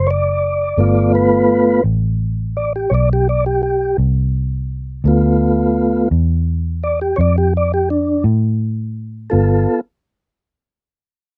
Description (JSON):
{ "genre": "slow blues", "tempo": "56 BPM (dotted quarters)", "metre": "12/8", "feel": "straight", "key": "G mixolydian", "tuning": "A4 = 440 Hz", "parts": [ { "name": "mellow tonewheel organ", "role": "sustained chords", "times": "0.0-9.8 s", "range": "A3 to D5", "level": "-17 LUFS", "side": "equal", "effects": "slow rotary speaker" }, { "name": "vintage muted fingered electric bass", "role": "bass", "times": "0.0-9.7 s", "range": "F#1 to A2", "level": "-19 LUFS", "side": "equal", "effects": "none" } ], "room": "little or no reverb", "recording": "recorded outdoors, with no room sound", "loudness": "-16 LUFS", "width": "mono", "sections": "0.0-9.3 A section; 9.3-11.4 B section", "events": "tonewheel organ solo 0.0-9.3", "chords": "0.0 D; 0.8 G9" }